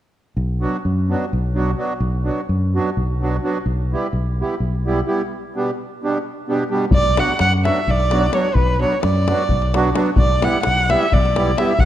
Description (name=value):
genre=balkan folk, Balkan wedding band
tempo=257 BPM (eighths)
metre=7/8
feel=straight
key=B minor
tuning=A4 = 443 Hz
part: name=fingered electric bass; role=bass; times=0.4-11.9 s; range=B1 to F#2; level=-20 LUFS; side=equal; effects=none
part: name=accordion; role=accompaniment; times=0.6-11.7 s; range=B2 to G4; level=-22 LUFS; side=right 2 dB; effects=none
part: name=dark violin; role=melody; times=6.9-11.9 s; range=B4 to F#5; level=-19 LUFS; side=right 1 dB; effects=none
part: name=davul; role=percussion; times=6.9-11.9 s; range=none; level=-21 LUFS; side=left 2 dB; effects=none
room=moderate recital hall reverb, RT60 1.7 s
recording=dark, warm production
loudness=-16 LUFS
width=side -12 dB against mid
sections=0.4-6.9 A section; 6.9-11.9 B section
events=none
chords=0.4 Bm; 3.6 Em/B; 5.3 G/B; 6.9 Bm; 10.2 Em/B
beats=| 0.36 0.60 0.83 1.07 1.30 1.54 1.77 | 2.01 2.24 2.48 2.71 2.95 3.18 3.42 | 3.65 3.88 4.12 4.35 4.59 4.82 5.05 | 5.29 5.52 5.76 5.99 6.22 6.46 6.69 | 6.92 7.16 7.39 7.62 7.86 8.09 8.32 | 8.55 8.79 9.02 9.25 9.48 9.71 9.95 | 10.18 10.41 10.64 10.88 11.11 11.34 11.57 | 11.80